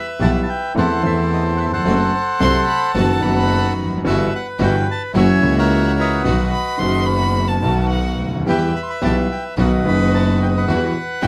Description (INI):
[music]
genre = tango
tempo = 109 BPM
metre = 4/4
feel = rubato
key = E harmonic minor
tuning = A4 = 443 Hz
[part]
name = bandoneon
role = melody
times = 0.0-11.3 s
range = F#4 to C6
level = -24 LUFS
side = equal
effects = none
[part]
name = warm concert grand piano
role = accompaniment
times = 0.2-11.3 s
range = F#1 to A4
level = -21 LUFS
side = equal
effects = none
[part]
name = rich chamber string section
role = stabs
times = 0.2-11.3 s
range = G3 to G4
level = -31 LUFS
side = equal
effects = none
[part]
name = clear double bass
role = bass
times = 0.2-11.3 s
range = F1 to E2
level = -23 LUFS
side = equal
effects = none
[part]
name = warm violin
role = second line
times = 2.4-11.3 s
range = F#5 to C6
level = -26 LUFS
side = equal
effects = none
[sound]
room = light reverb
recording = close, detailed microphones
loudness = -18 LUFS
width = mono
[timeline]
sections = 0.0-11.3 A section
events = none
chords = 0.0 Em; 0.8 Am/E; 1.9 F#dim; 2.9 B/F#; 4.0 Emadd9/G; 5.1 F#7; 6.2 B; 8.5 Em; 9.6 B; 10.7 Emadd9